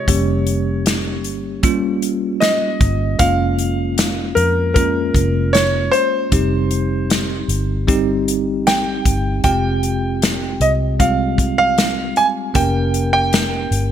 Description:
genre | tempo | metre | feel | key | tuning
pop ballad | 77 BPM | 4/4 | straight | F minor | A4 = 443 Hz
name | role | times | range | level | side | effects
warm concert grand piano | melody | 0.0-13.9 s | Bb4 to Ab5 | -19 LUFS | right 1 dB | none
bell-like tine electric piano | accompaniment | 0.0-13.9 s | C3 to Bb4 | -21 LUFS | right 1 dB | medium stereo tremolo
vintage muted fingered electric bass | bass | 0.1-13.9 s | F1 to F2 | -21 LUFS | equal | none
natural country drum kit | drums | 0.1-13.9 s | hi-hat, kick drum, snare drum | -18 LUFS | left 1 dB | gated reverb
room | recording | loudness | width
light reverb, small room ambience | bright 1980s-style digital production | -15 LUFS | side -10 dB against mid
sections
0.0-13.9 A section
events
none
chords
0.1 Gdim/F; 3.2 Bbm7/F; 6.3 Cm/F; 9.4 Fmadd9; 12.6 Gdim/F

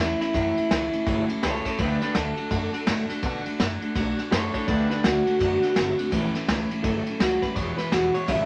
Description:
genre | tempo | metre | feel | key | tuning
rockabilly | 166 BPM | 4/4 | swing 62% on 8ths | A mixolydian | A4 = 440 Hz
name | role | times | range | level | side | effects
electric guitar through a small old amp | melody | 0.0-8.5 s | D4 to E5 | -28 LUFS | equal | none
picked steel-string acoustic guitar | accompaniment | 0.0-8.5 s | E2 to F#4 | -32 LUFS | equal | none
upright bass | bass | 0.0-8.5 s | E1 to B2 | -34 LUFS | equal | none
vintage brush drum kit | drums | 0.2-8.4 s | kick drum, ride cymbal, snare drum | -30 LUFS | equal | none
electric guitar at the edge of break-up | riff | 4.7-8.5 s | E2 to C4 | -35 LUFS | equal | spring reverb
room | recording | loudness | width
moderate studio reverb, RT60 0.6 s | vinyl crackle, nothing above 10.3 kHz | -25 LUFS | mono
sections
0.0-8.5 A section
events
none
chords
0.0 A; 1.8 D; 6.1 A; 7.6 E

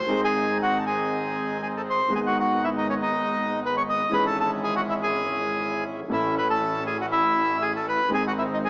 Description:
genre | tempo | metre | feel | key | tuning
tango | 120 BPM | 4/4 | rubato | unclear | A4 = 440 Hz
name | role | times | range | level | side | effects
bandoneon | melody | 0.0-8.7 s | C#4 to D#6 | -23 LUFS | equal | none
warm concert grand piano | accompaniment | 0.1-8.7 s | G#1 to A4 | -29 LUFS | equal | none
bandoneon | stabs | 0.1-8.7 s | G#3 to E4 | -32 LUFS | equal | none
clear double bass | bass | 0.1-8.7 s | G#1 to A1 | -36 LUFS | equal | none
room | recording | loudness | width
moderate scoring stage reverb, RT60 1.5 s | small speaker sound | -22 LUFS | side -34 dB against mid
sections
0.0-8.7 A section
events
none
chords
0.1 G#; 2.1 G#m; 4.1 C#m/G#; 6.1 A; 8.1 G#

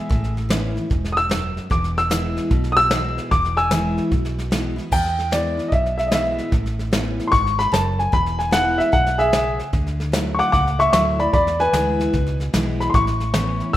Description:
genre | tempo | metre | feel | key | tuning
honky-tonk and classic country | 150 BPM | 4/4 | swing 66% on 8ths | E mixolydian | A4 = 440 Hz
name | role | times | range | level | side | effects
warm upright piano | melody | 0.0-13.8 s | G#4 to E6 | -19 LUFS | left 1 dB | none
picked steel-string acoustic guitar | accompaniment | 0.0-13.8 s | E2 to E4 | -26 LUFS | equal | none
vintage muted fingered electric bass | bass | 0.1-13.8 s | E1 to E2 | -25 LUFS | equal | none
soft brush drum kit | drums | 0.1-13.8 s | crash cymbal, hi-hat, kick drum, snare drum | -23 LUFS | equal | none
room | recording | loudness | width
moderate digital room reverb, RT60 1.2 s, studio reverb | rough home demo mix | -17 LUFS | side -13 dB against mid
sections
0.0-4.9 A section; 4.9-13.8 A section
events
upright piano solo 0.0-4.9, 4.9-13.8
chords
0.1 Aadd9; 1.7 E; 6.5 Aadd9; 8.1 E; 9.7 Dadd9; 11.3 E; 12.9 Aadd9

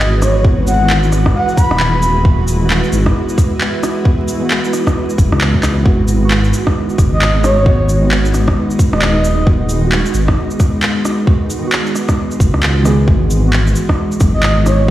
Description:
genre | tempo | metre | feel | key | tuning
future garage | 133 BPM | 4/4 | swing 60% on 16ths | G# minor | A4 = 439 Hz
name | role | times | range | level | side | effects
breathy flute-like synth lead | melody | 0.0-2.2, 7.1-9.5, 14.3-14.9 s | C#5 to B5 | -18 LUFS | equal | wide subtle chorus, cassette tape, digital delay
muted felt-like synth keys | accompaniment | 0.0-14.9 s | D#3 to G#4 | -20 LUFS | right 1 dB | chorus, sidechain pumping, digital delay
granular cloud pad | sustained chords | 0.0-14.9 s | G#3 to B4 | -21 LUFS | equal | built-in reverb, sidechain pumping
dark detuned saw bass | bass | 0.0-14.9 s | D#1 to C#2 | -14 LUFS | equal | sidechain pumping
electronic handclaps, rim click, cabasa and shaker | drums | 0.0-14.8 s | none | -19 LUFS | equal | none
electronic kick drum | drums | 0.4-14.9 s | none | -12 LUFS | equal | none
room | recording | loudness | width
light reverb, digital ambience | played on a big sound system in a bare room, stone room reverb, vinyl crackle | -11 LUFS | side -14 dB against mid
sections
0.0-14.9 A section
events
none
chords
0.0 Eadd9; 5.9 G#m7; 13.1 Eadd9

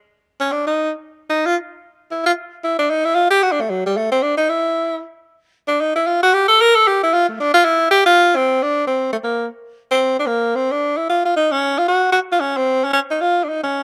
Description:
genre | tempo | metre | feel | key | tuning
jazz | 227 BPM | 4/4 | swing 60% on 8ths | unclear | A4 = 440 Hz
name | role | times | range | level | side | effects
breathy tenor saxophone | solo | 0.4-13.8 s | Gb3 to Bb4 | -17 LUFS | equal | none
room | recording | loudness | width
moderate spring reverb, RT60 1.2 s | close, detailed microphones | -17 LUFS | mono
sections
0.0-8.2 A section; 8.2-13.8 B section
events
tenor saxophone solo 0.0-8.2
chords
none

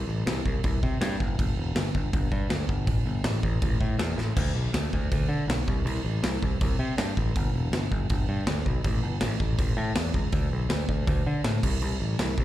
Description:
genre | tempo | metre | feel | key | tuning
punk rock | 161 BPM | 4/4 | straight | unclear | A4 = 438 Hz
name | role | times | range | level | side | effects
overdriven picked electric bass | bass | 0.0-12.4 s | E1 to D3 | -28 LUFS | equal | none
big rock drum kit | drums | 0.3-12.4 s | crash cymbal, kick drum, snare drum | -27 LUFS | equal | none
room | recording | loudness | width
little or no reverb | live gig heard through the venue's PA, club reverb | -24 LUFS | side -14 dB against mid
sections
0.0-4.4 A section; 4.4-12.4 B section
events
drum fill 4.2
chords
none

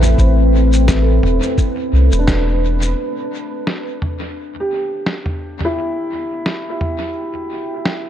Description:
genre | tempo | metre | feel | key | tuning
ambient dub | 86 BPM | 4/4 | swing 56% on 16ths | E minor | A4 = 442 Hz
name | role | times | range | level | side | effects
deep dark ambient pad | sustained chords | 0.0-8.1 s | A3 to G5 | -21 LUFS | equal | chorus, built-in reverb
felt-muted upright piano | arpeggios | 0.0-8.1 s | D4 to B4 | -24 LUFS | left 1 dB | low-pass filter, analog delay
soft dub sub bass | bass | 0.0-2.9 s | E1 to C2 | -13 LUFS | equal | none
lo-fi sampler-style drum kit | drums | 0.0-8.0 s | shaker, snare drum, toms | -23 LUFS | equal | low-pass filter on perc, low-pass filter on snare, low-pass filter on toms, dub echo
electronic kick drum | drums | 0.2-2.4 s | none | -17 LUFS | equal | none
room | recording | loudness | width
digital ambience | echo-heavy mix | -15 LUFS | side -11 dB against mid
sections
0.0-3.0 A section; 3.0-8.1 B section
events
band accent 2.3-2.6; filter sweep on ambient pad 3.0-8.1; filter sweep on felt piano 3.0-8.1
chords
0.0 Am7; 3.0 Em9

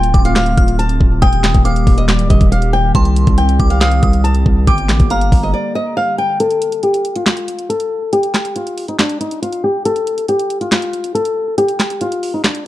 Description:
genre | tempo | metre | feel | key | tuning
hip hop, trap | 139 BPM | 4/4 | half-time | unclear | A4 = 444 Hz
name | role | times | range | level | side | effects
flamenco guitar | melody | 0.0-12.6 s | D4 to A5 | -17 LUFS | left 1 dB | low-pass filter, tape echo
glassy synth bell | second line | 0.0-5.9 s | Bb5 to F6 | -25 LUFS | right 2 dB | chorus, tremolo, tape echo
hollow soft pad | sustained chords | 0.0-6.4 s | D3 to G4 | -21 LUFS | equal | chorus
long sustained 808-style bass | bass | 0.0-5.5 s | D1 to C2 | -14 LUFS | equal | none
trap drum kit | drums | 0.0-12.7 s | handclaps, hi-hat, kick drum, snare drum | -14 LUFS | equal | vintage 12-bit sampler grit
room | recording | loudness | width
light reverb | dark, warm production | -12 LUFS | side -15 dB against mid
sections
0.0-6.4 A section; 6.4-12.7 B section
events
break 5.5-6.4, 6.4-12.7; filter sweep on nylon-string guitar 6.4-12.7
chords
0.0 Dm7; 1.2 Eb; 2.9 Cm; 4.7 Gm; 6.4 N.C.

